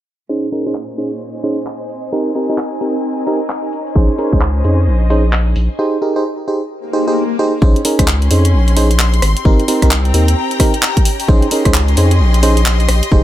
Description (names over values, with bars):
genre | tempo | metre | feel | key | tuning
UK garage, two-step garage | 131 BPM | 4/4 | swing 62% on 16ths | Bb dorian | A4 = 441 Hz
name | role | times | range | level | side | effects
ethereal airy pad | sustained chords | 1.3-13.2 s | Eb4 to G5 | -28 LUFS | equal | ensemble chorus, built-in reverb, phaser, sidechain pumping
FM electric piano | stabs | 0.3-13.2 s | C4 to C5 | -17 LUFS | right 2 dB | chorus, low-pass filter, digital delay
clear studio string section | texture | 0.3-13.2 s | Bb2 to C6 | -24 LUFS | left 2 dB | sidechain pumping
house drum kit | drums | 0.5-13.1 s | handclaps, hi-hat, rim click | -19 LUFS | equal | none
saturated sub bass | bass | 4.0-13.2 s | F1 to F2 | -12 LUFS | equal | none
electronic kick drum | drums | 4.0-4.4, 7.6-13.2 s | none | -12 LUFS | equal | none
swell | sound effects | 6.8-7.6 s | none | -21 LUFS | left 7 dB | none
room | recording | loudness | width
light reverb, digital ambience | low-pass filter | -12 LUFS | side -13 dB against mid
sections
0.3-7.6 A section; 7.6-13.2 B section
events
filter sweep on FM electric piano 0.3-7.6; filter sweep 0.3-7.6; break 5.8-7.6; swell 6.8-7.6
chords
0.3 Bbm11; 1.9 Abmaj9; 3.7 Bbm11; 5.8 Ebadd11; 7.6 Bbm11; 9.2 Abmaj9; 11.1 Bbm11